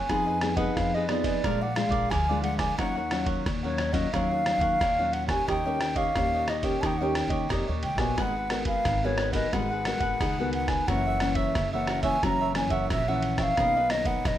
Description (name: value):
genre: samba and choro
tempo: 89 BPM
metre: 4/4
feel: straight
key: unclear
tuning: A4 = 440 Hz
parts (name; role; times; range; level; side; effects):
- hollow wooden flute; melody; 0.0-14.4 s; C#5 to A#5; -28 LUFS; equal; none
- cavaquinho; accompaniment; 0.0-14.4 s; D#4 to F#5; -34 LUFS; right 4 dB; none
- nylon-string guitar; accompaniment; 0.0-14.4 s; F#2 to A#4; -30 LUFS; left 2 dB; none
- upright bass; bass; 0.1-14.4 s; F#1 to F2; -33 LUFS; equal; none
- lo-fi sampler-style drum kit; drums; 0.1-14.4 s; kick drum, ride cymbal, rim click; -32 LUFS; equal; none
room: moderate studio reverb, RT60 0.7 s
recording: none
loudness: -24 LUFS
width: side -12 dB against mid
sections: 0.0-14.4 A section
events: none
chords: 0.1 Fm7b5; 1.4 A#7; 2.8 D#m9; 5.5 D#7; 8.2 G#m9; 10.9 F#7; 13.6 Bmaj9